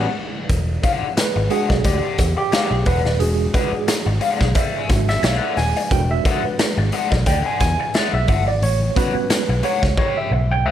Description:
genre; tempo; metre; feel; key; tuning
funk; 89 BPM; 4/4; swing 56% on 16ths; E mixolydian; A4 = 440 Hz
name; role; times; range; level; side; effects
raw garage guitar; accompaniment; 0.0-10.7 s; G4 to G#5; -24 LUFS; left 8 dB; wah, overdrive, spring reverb
tine electric piano; stabs; 0.0-10.7 s; G3 to G#5; -22 LUFS; right 4 dB; medium stereo tremolo
vintage muted picked electric bass; bass; 0.0-10.7 s; D#1 to E2; -20 LUFS; equal; none
raw garage drum kit; drums; 0.5-10.2 s; hi-hat, kick drum, snare drum; -21 LUFS; equal; none
room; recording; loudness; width
light reverb; none; -16 LUFS; side -11 dB against mid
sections
0.5-10.7 A section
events
band accent 0.0-0.5; tine electric piano solo 0.5-10.7; drum fill 10.0-10.7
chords
0.5 E9; 8.6 A13

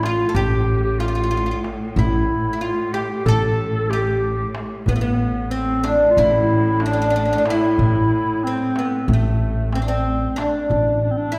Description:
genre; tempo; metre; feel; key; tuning
Turkish makam ensemble; 186 BPM (eighths); 9/8; straight; A makam ussak; A4 = 440 Hz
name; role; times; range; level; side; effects
oud; melody; 0.0-11.4 s; A3 to A4; -25 LUFS; equal; none
breathy clarinet; second line; 0.0-11.4 s; A3 to A4; -25 LUFS; equal; none
upright bass; bass; 0.0-11.4 s; A1; -26 LUFS; equal; none
rich cello; drone; 0.0-10.8 s; A2; -32 LUFS; equal; none
darbuka; percussion; 0.0-11.4 s; none; -27 LUFS; equal; none
room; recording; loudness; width
wet recital hall reverb, RT60 1.6 s; recorded in a church or concert hall; -20 LUFS; mono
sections
0.0-10.7 A section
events
none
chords
none

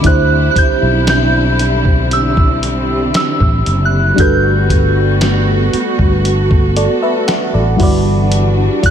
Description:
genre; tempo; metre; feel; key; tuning
contemporary R&B; 58 BPM; 4/4; straight; unclear; A4 = 440 Hz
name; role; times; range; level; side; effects
soft synth bell; melody; 0.0-8.9 s; E6 to G6; -18 LUFS; right 1 dB; chorus, diffuse ambient delay
mellow FM electric piano; accompaniment; 0.0-8.9 s; D3 to F#5; -18 LUFS; equal; chorus, phaser
warm studio string section; sustained chords; 0.0-8.9 s; D3 to A4; -18 LUFS; equal; sidechain pumping
sustaining fretless electric bass; bass; 0.0-8.7 s; F#1 to D2; -14 LUFS; equal; none
dusty soul sampler-style drum kit; drums; 0.0-8.9 s; hi-hat, kick drum, snare drum; -16 LUFS; equal; none
soft round pluck; texture; 0.0-8.9 s; D5 to E6; -28 LUFS; left 3 dB; none
room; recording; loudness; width
light reverb; none; -10 LUFS; side -8 dB against mid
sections
0.0-8.9 A section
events
none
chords
0.0 D9sus4; 4.2 Gmaj9

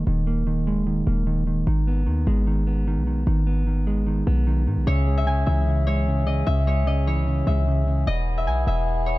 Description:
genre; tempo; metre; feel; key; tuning
hip hop; 150 BPM; 4/4; half-time; G# minor; A4 = 437 Hz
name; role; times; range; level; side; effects
Celtic harp; melody; 0.0-0.3, 4.9-9.2 s; G#4 to G#5; -28 LUFS; left 2 dB; low-pass filter
mellow electric guitar; accompaniment; 0.0-8.1 s; C#3 to B3; -25 LUFS; right 2 dB; low-pass filter
hard-hitting 808-style bass; bass; 0.0-9.2 s; D#1 to G#2; -22 LUFS; equal; none
hand-pumped harmonium; sustained chords; 4.9-9.2 s; C#3 to E5; -33 LUFS; left 4 dB; none
room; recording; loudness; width
small room ambience; dark, warm production; -20 LUFS; side -18 dB against mid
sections
0.0-9.2 A section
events
break 0.0-4.9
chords
0.0 D#sus4; 1.7 G#m; 4.9 C#m; 8.1 E

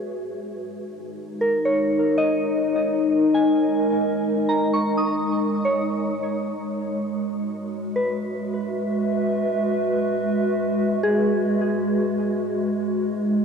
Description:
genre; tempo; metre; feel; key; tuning
ambient; 78 BPM; 4/4; straight; E lydian; A4 = 439 Hz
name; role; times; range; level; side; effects
warbly tape-like pad; sustained chords; 0.0-13.4 s; G#3 to E5; -22 LUFS; equal; chorus, built-in reverb
soft synth bell; arpeggios; 0.0-12.6 s; G#4 to D#6; -26 LUFS; equal; chorus, analog delay
room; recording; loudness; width
wet huge ambient reverb, RT60 7.7 s; dreamy mix soaked in reverb, cassette tape; -20 LUFS; side -6 dB against mid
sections
0.0-13.4 A section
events
filter sweep on ambient pad 0.0-13.4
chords
0.3 G#sus2; 6.4 Eadd9; 12.6 G#5

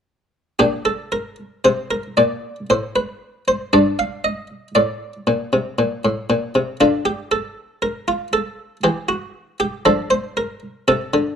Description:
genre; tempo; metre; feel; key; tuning
classical, baroque-style suite movement for harpsichord; 59 BPM; 3/4; rubato; G minor; A4 = 440 Hz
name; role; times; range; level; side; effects
buff-stop harpsichord; solo; 0.6-11.4 s; G2 to F5; -17 LUFS; equal; none
room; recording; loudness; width
light reverb; dark, warm production; -18 LUFS; side -7 dB against mid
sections
0.6-11.4 A section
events
none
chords
0.6 Bbmaj13; 2.7 N.C.; 3.7 Gm; 6.8 N.C.; 9.9 Dm

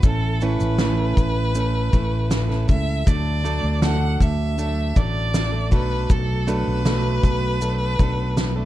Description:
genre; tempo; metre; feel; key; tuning
acoustic pop; 79 BPM; 4/4; straight; D major; A4 = 442 Hz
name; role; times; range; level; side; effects
clear violin; melody; 0.0-8.7 s; A4 to F#5; -27 LUFS; equal; plate reverb
fingerpicked plugged-in steel-string acoustic guitar; accompaniment; 0.0-8.7 s; A2 to A4; -26 LUFS; right 3 dB; plate reverb
fretless electric bass; bass; 0.0-8.7 s; A1 to D2; -22 LUFS; equal; lush chorus
loose indie drum kit; drums; 0.0-8.5 s; kick drum, shaker, snare drum; -21 LUFS; equal; none
room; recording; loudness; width
little or no reverb; dark, warm production; -18 LUFS; side -14 dB against mid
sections
0.0-8.7 A section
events
none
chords
0.0 A; 3.1 D; 5.7 Bm7

